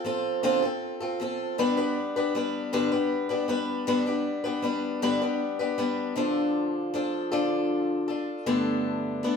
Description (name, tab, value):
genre	rock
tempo	52 BPM (dotted quarters)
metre	6/8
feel	straight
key	D dorian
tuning	A4 = 442 Hz
part	picked swing-style acoustic guitar	solo	0.0-9.4 s	G2 to B4	-25 LUFS	left 1 dB	none
room	wet large studio reverb, RT60 1.1 s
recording	band playing live in one room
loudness	-25 LUFS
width	side -6 dB against mid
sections	0.0-6.2 A section; 6.2-9.4 B section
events	none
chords	0.0 Dm7; 1.6 G; 6.2 Dm; 8.5 Gadd9